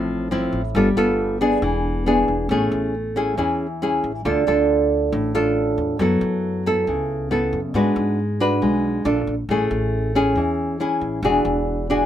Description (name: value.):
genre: bossa nova.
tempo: 137 BPM.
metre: 4/4.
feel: straight.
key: A major.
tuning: A4 = 439 Hz.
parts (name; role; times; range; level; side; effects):
nylon-string guitar; accompaniment; 0.0-12.1 s; A2 to B4; -19 LUFS; equal; none.
upright bass; bass; 0.0-12.1 s; E1 to G#2; -27 LUFS; equal; none.
room: moderate small room reverb, RT60 0.6 s.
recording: none.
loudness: -18 LUFS.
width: side -11 dB against mid.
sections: 0.0-2.5 A section; 2.5-12.1 B section.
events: none.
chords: 0.0 Dm9 (rootless); 0.7 G9; 1.6 E7; 2.5 Amaj7; 4.2 Dm; 6.0 F#m7; 7.7 Bm6; 9.1 Bbmaj7; 9.5 Amaj7; 11.2 E9.